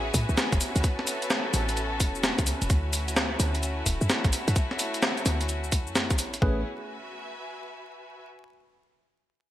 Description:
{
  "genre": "UK garage, two-step garage",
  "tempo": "129 BPM",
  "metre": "4/4",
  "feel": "swing 65% on 16ths",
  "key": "A major",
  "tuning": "A4 = 440 Hz",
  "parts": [
    { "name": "warm studio violin section", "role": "sustained chords", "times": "0.0-6.6 s", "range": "A3 to A4", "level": "-34 LUFS", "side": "left 1 dB", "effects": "sidechain pumping" },
    { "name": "short 808-style bass", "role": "bass", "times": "0.0-6.6 s", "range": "D1 to A2", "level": "-28 LUFS", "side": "equal", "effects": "none" },
    { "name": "clear studio string section", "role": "texture", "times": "0.0-8.2 s", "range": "F#4 to G#5", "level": "-38 LUFS", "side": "equal", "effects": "sidechain pumping" },
    { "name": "breakbeat sampler-style drum kit", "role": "drums", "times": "0.1-6.4 s", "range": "hi-hat, shaker, snare drum", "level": "-27 LUFS", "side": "equal", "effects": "studio reverb, gated reverb" },
    { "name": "electronic kick drum", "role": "drums", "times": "0.1-6.5 s", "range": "none", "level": "-26 LUFS", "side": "equal", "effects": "overdrive, studio reverb" },
    { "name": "tine electric piano", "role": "stabs", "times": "6.4-6.6 s", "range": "A3 to B4", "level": "-33 LUFS", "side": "equal", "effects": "overdrive, digital delay" }
  ],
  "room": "light reverb",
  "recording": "bright 1980s-style digital production, vinyl crackle",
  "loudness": "-24 LUFS",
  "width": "side -13 dB against mid",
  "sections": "0.0-6.4 A section; 6.4-8.3 B section",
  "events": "fade-out on string section 0.0-6.4",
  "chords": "0.0 Amaj9; 2.7 Dmaj9; 6.4 Amaj9"
}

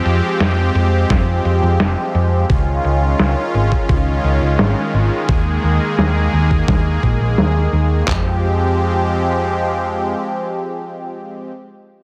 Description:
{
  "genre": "synthwave",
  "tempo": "86 BPM",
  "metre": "4/4",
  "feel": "straight",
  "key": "F minor",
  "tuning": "A4 = 439 Hz",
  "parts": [
    { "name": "soft supersaw", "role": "sustained chords", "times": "0.0-11.5 s", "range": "Eb3 to Ab4", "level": "-22 LUFS", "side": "equal", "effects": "phaser, sidechain pumping" },
    { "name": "hollow-body short-scale picked electric bass", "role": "bass", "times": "0.1-10.1 s", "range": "F1 to F2", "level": "-19 LUFS", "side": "equal", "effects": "none" },
    { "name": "detuned 8-bit digital drum machine", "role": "drums", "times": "0.1-7.9 s", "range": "hi-hat, snare drum", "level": "-23 LUFS", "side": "equal", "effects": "low-pass filter on snare, low-pass filter on hats, low-pass filter on room" },
    { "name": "detuned 8-bit digital drum machine", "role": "drums", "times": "1.1-8.2 s", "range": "handclaps, kick drum, toms", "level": "-20 LUFS", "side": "equal", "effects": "none" }
  ],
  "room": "light reverb",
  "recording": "none",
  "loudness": "-16 LUFS",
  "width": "mono",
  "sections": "0.0-8.1 A section; 8.1-10.9 B section",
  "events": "filter sweep on drum 0.0-8.1",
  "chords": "0.0 Fmadd9; 2.5 Dbadd9; 5.3 Ebsus4; 8.1 Fmadd9"
}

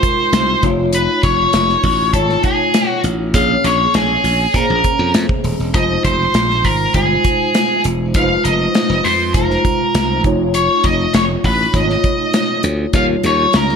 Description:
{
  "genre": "polished 1980s jazz-funk pop",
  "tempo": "100 BPM",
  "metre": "4/4",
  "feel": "straight",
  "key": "F minor",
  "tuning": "A4 = 441 Hz",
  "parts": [
    { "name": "octave-fuzz lead guitar", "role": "melody", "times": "0.0-13.8 s", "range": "G#4 to F5", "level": "-16 LUFS", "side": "left 1 dB", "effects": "distortion" },
    { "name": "mellow tine electric piano", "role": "accompaniment", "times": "0.0-13.8 s", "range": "G3 to C#5", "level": "-19 LUFS", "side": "left 1 dB", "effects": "fast stereo tremolo, tube saturation, ensemble chorus" },
    { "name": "modern studio drum kit", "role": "drums", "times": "0.0-13.8 s", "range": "hi-hat, kick drum, snare drum", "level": "-19 LUFS", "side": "equal", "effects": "gated reverb" },
    { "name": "glassy slap bass", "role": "bass", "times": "0.3-13.8 s", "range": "Eb1 to Bb2", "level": "-19 LUFS", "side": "right 1 dB", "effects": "none" }
  ],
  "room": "moderate plate reverb, RT60 1.4 s",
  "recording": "bright 1980s-style digital production",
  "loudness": "-13 LUFS",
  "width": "side -6 dB against mid",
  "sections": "0.0-13.8 A section",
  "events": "none",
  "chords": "0.0 Fm7; 0.6 F7alt; 3.3 Bbm9; 5.7 Fm7; 10.2 F7b13; 12.9 Eb9"
}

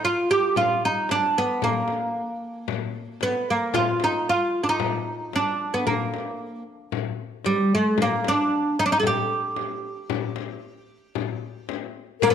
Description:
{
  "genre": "Arabic maqam ensemble",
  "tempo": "113 BPM",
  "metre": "4/4",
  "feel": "straight",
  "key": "G maqam saba",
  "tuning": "A4 = 440 Hz",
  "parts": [
    { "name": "oud", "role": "melody", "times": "0.0-12.3 s", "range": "G3 to Ab4+50c", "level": "-22 LUFS", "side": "right 2 dB", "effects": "none" },
    { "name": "frame drum", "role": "percussion", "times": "0.6-12.3 s", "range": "none", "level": "-30 LUFS", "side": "left 10 dB", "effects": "none" },
    { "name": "breathy mellow low ney", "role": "second line", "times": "12.2-12.3 s", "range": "Bb4", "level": "-18 LUFS", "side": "left 20 dB", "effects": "none" },
    { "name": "riq", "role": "percussion", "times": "12.2-12.3 s", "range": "none", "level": "-30 LUFS", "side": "right 11 dB", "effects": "none" }
  ],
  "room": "moderate echo chamber reverb, RT60 1.4 s, small room ambience",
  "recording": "1960s-style stereo with parts hard left and right",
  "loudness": "-22 LUFS",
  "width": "side -8 dB against mid",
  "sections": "0.0-12.2 A section",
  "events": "none",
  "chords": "none"
}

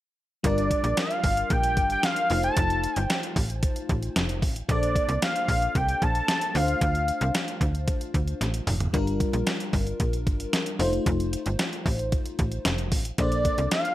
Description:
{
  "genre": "early-eighties boogie funk",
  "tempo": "113 BPM",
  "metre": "4/4",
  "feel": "straight",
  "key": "G minor",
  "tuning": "A4 = 441 Hz",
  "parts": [
    { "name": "FM electric piano with soft pad layer", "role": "accompaniment", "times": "0.4-13.9 s", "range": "G3 to C5", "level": "-31 LUFS", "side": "left 2 dB", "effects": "chorus" },
    { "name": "slap-like FM bass", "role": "bass", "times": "0.4-13.7 s", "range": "F1 to D2", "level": "-27 LUFS", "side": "equal", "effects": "none" },
    { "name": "crisp 8-bit digital drum machine", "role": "drums", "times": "0.4-13.9 s", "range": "hi-hat, kick drum, snare drum, toms", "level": "-27 LUFS", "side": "equal", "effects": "overdrive, gated reverb" },
    { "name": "fat analog lead", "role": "melody", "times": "0.5-7.6, 13.2-13.9 s", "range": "D5 to A5", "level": "-26 LUFS", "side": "equal", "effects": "none" }
  ],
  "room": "light reverb",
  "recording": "none",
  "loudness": "-23 LUFS",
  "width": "side -14 dB against mid",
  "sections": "0.4-13.9 A section",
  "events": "drum fill 8.4-8.9",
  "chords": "0.4 Gm7; 2.3 F7; 4.7 Bbmaj9; 6.5 Dm7; 8.9 Gm7; 10.8 F7; 13.2 Bbmaj9"
}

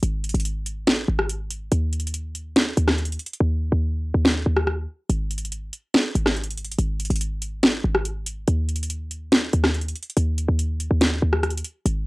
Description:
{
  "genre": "hip hop, trap",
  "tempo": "142 BPM",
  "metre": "4/4",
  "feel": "half-time",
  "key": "unclear",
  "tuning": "A4 = 442 Hz",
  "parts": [
    { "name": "short 808-style bass", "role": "bass", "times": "0.0-12.1 s", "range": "Ab1 to Eb2", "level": "-23 LUFS", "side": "equal", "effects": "none" },
    { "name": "trap drum kit", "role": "drums", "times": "0.0-12.0 s", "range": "hi-hat, rim click, snare drum", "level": "-21 LUFS", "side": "equal", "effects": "overdrive, cassette tape" }
  ],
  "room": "light reverb",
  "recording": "home recording on cassette",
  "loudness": "-21 LUFS",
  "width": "side -23 dB against mid",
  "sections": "0.0-12.1 A section",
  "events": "hi-hats muted 3.4-5.1",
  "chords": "none"
}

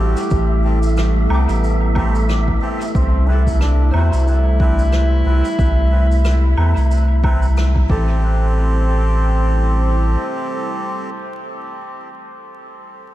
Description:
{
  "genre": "ambient dub",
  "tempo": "91 BPM",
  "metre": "4/4",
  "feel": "swing 58% on 16ths",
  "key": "A dorian",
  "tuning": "A4 = 440 Hz",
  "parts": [
    { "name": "clear trombone", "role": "melody", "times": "0.0-11.1 s", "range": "C4 to G4", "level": "-26 LUFS", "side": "equal", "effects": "dub echo" },
    { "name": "deep dark ambient pad", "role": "sustained chords", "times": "0.0-11.6 s", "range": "G3 to B5", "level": "-26 LUFS", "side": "equal", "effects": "chorus, built-in reverb" },
    { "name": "melodica", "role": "stabs", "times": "0.0-11.1 s", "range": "C4 to B4", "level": "-28 LUFS", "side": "equal", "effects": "dub echo" },
    { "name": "warm sub bass", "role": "bass", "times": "0.0-10.2 s", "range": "A1 to E2", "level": "-15 LUFS", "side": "equal", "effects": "tube saturation" },
    { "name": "wind-like tuned noise texture", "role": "texture", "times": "0.0-8.2 s", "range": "E5", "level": "-31 LUFS", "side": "right 2 dB", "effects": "built-in reverb" },
    { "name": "shaker, rim click and woodblock", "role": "drums", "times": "0.2-7.7 s", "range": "none", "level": "-30 LUFS", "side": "equal", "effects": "dub echo" },
    { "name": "electronic kick drum", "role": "drums", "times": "0.3-8.0 s", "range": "none", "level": "-20 LUFS", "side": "equal", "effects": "none" },
    { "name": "concert harp", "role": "arpeggios", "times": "1.3-11.1 s", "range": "A3 to D6", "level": "-32 LUFS", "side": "right 2 dB", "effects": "dub echo" }
  ],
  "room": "small room ambience",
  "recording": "vinyl crackle",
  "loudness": "-14 LUFS",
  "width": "side -15 dB against mid",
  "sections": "0.0-8.2 A section; 8.2-10.9 B section",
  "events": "band accent 7.6-7.9",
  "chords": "0.0 Am7; 3.0 Cmaj7; 7.9 Am7"
}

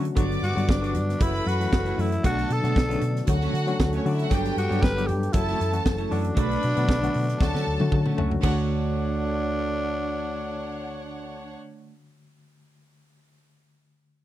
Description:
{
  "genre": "disco",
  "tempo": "116 BPM",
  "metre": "4/4",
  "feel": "straight",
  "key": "D major",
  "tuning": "A4 = 440 Hz",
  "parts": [
    { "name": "clean electric guitar", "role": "accompaniment", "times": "0.0-12.0 s", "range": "A3 to F#4", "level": "-33 LUFS", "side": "right 6 dB", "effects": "wide subtle chorus" },
    { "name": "reed electric piano", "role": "accompaniment", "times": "0.0-14.2 s", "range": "D3 to C#5", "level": "-31 LUFS", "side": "left 5 dB", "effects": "overdrive, fast tremolo" },
    { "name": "mellow French horn section", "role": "sustained chords", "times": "0.0-11.6 s", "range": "D3 to C#5", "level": "-34 LUFS", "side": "left 2 dB", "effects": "stereo widening" },
    { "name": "hollow-body short-scale fingered electric bass", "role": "bass", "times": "0.0-11.6 s", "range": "F#1 to D3", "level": "-27 LUFS", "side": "equal", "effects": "none" },
    { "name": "tight funk drum kit", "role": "drums", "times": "0.0-8.6 s", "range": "crash cymbal, hi-hat, kick drum, snare drum, toms", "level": "-24 LUFS", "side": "equal", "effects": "none" },
    { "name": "warm studio violin section", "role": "second line", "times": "0.2-11.5 s", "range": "C#4 to D6", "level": "-34 LUFS", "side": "right 1 dB", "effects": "none" },
    { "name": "cowbell", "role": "percussion", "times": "0.2-8.7 s", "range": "none", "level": "-37 LUFS", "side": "right 15 dB", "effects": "none" },
    { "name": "growling tenor saxophone", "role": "melody", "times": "0.4-11.6 s", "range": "D4 to B4", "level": "-30 LUFS", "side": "equal", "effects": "none" }
  ],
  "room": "little or no reverb",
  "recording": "dry, close 1970s-style studio recording",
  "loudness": "-22 LUFS",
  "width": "side -13 dB against mid",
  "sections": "0.0-8.4 A section; 8.4-12.6 B section",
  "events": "drum fill 7.4-8.4",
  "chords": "0.2 Gmaj7; 1.2 F#m7; 2.2 Bm7; 3.3 Dmaj7; 4.3 Gmaj7; 5.3 F#m7; 6.4 Bm7; 7.4 Dmaj7"
}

